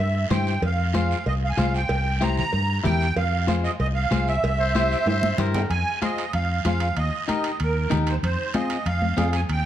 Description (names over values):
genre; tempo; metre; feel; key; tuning
latin, cumbia; 190 BPM; 4/4; straight; F minor from 5.7 s; A4 = 439 Hz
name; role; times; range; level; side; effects
musette accordion; melody; 0.0-9.7 s; Bb4 to Bb5; -26 LUFS; right 3 dB; none
fingered electric bass; bass; 0.0-9.6 s; C2 to G2; -24 LUFS; equal; none
cowbell and timbales; percussion; 0.0-9.7 s; none; -34 LUFS; right 4 dB; none
clean electric guitar; accompaniment; 0.3-9.4 s; C4 to C5; -30 LUFS; left 4 dB; none
congas; percussion; 0.3-9.3 s; none; -30 LUFS; left 1 dB; none
guiro; percussion; 0.3-9.7 s; none; -38 LUFS; right 7 dB; none
growling trumpet; second line; 4.6-5.7 s; Bb4 to C5; -29 LUFS; left 4 dB; none
room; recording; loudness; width
moderate large studio reverb, RT60 1.4 s; dark, warm production; -21 LUFS; side -11 dB against mid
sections
0.0-5.7 A section; 5.7-9.7 B section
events
drum fill 5.1-5.7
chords
0.0 C; 0.6 Fm; 1.9 C7; 3.2 Fm; 4.4 C7; 5.7 Fm; 7.0 Eb; 8.2 Fm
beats
0.31 | 0.63 0.95 1.26 1.58 | 1.90 2.21 2.53 2.85 | 3.17 3.48 3.80 4.12 | 4.43 4.75 5.07 5.38 | 5.70 6.02 6.33 6.65 | 6.96 7.28 7.60 7.91 | 8.23 8.55 8.86 9.18 | 9.49